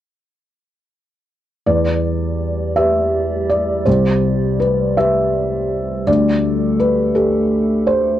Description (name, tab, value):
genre	neoclassical piano and strings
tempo	55 BPM (dotted quarters)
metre	6/8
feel	rubato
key	E minor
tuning	A4 = 441 Hz
part	felt-muted upright piano	accompaniment	1.7-8.2 s	C2 to E5	-15 LUFS	equal	none
part	warbly tape-like pad	sustained chords	1.7-8.2 s	G3 to D5	-23 LUFS	right 2 dB	chorus, built-in reverb, phaser
room	light reverb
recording	dry, close 1970s-style studio recording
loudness	-15 LUFS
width	side -12 dB against mid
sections	1.7-8.2 A section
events	none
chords	1.7 Em7; 3.9 Cmaj7; 6.1 Dsus4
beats	| 1.67 2.77 | 3.86 4.98 | 6.07 7.15